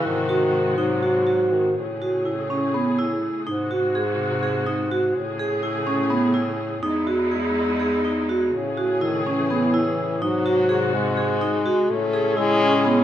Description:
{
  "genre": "contemporary instrumental, chamber music in an uneven meter",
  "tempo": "249 BPM (eighths)",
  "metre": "7/8",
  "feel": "straight",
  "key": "unclear",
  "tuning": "A4 = 440 Hz",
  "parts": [
    { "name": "mellow French horn", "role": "second line", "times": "0.0-1.8, 8.5-13.0 s", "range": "C#3 to A3", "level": "-24 LUFS", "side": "left 4 dB", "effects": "none" },
    { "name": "muted symphonic string section", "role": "sustained chords", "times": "0.0-13.0 s", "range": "B#2 to G#4", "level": "-28 LUFS", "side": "left 1 dB", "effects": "none" },
    { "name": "vibraphone with medium hard mallets", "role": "arpeggios", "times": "0.0-13.0 s", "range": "B3 to G#4", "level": "-22 LUFS", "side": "right 2 dB", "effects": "none" },
    { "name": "mellow bass clarinet", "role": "bass", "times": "0.0-13.0 s", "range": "E2 to A2", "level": "-26 LUFS", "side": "left 1 dB", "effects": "none" }
  ],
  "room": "light reverb",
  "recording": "close, detailed microphones",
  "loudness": "-20 LUFS",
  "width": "side -11 dB against mid",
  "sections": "0.0-1.8 A section; 1.8-13.0 B section",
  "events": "none",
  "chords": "0.1 G#7; 1.8 Amaj7; 3.5 G#7; 5.2 Amaj7; 6.8 Emaj7; 8.5 Amaj7; 10.2 G#7; 11.9 Amaj7",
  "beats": "| 0.05 0.29 0.54 0.78 1.03 1.27 1.52 | 1.77 2.02 2.27 2.51 2.75 2.99 3.24 | 3.48 3.72 3.96 4.20 4.44 4.68 4.92 | 5.16 5.40 5.64 5.88 6.12 6.36 6.60 | 6.84 7.08 7.32 7.56 7.80 8.05 8.29 | 8.54 8.78 9.02 9.27 9.51 9.75 9.99 | 10.23 10.47 10.71 10.94 11.18 11.42 11.66 | 11.90 12.14 12.38 12.62 12.86"
}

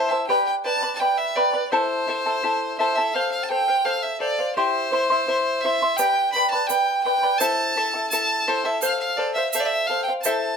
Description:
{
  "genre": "andean folk, Andean ensemble",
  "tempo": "84 BPM",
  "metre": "2/4",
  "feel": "straight",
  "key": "unclear",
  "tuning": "A4 = 441 Hz",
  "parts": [
    { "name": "clear fiddle", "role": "melody", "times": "0.0-10.6 s", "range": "C5 to B5", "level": "-22 LUFS", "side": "right 1 dB", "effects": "none" },
    { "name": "charango", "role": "accompaniment", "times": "0.0-10.6 s", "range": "E4 to C6", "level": "-23 LUFS", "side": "left 1 dB", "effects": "none" },
    { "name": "tube shaker", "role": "percussion", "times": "6.0-10.4 s", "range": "none", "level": "-28 LUFS", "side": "right 5 dB", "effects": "none" }
  ],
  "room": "moderate studio reverb, RT60 0.6 s",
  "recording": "band playing live in one room",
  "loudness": "-20 LUFS",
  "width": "side -6 dB against mid",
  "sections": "0.3-10.6 A section",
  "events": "none",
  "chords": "0.3 G; 1.7 Am; 3.1 F; 4.6 C; 6.0 G; 7.4 Am; 8.8 F",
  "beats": "| 0.29 1.00 | 1.72 2.43 | 3.14 3.85 | 4.56 5.27 | 5.99 6.70 | 7.41 8.12 | 8.83 9.54 | 10.25"
}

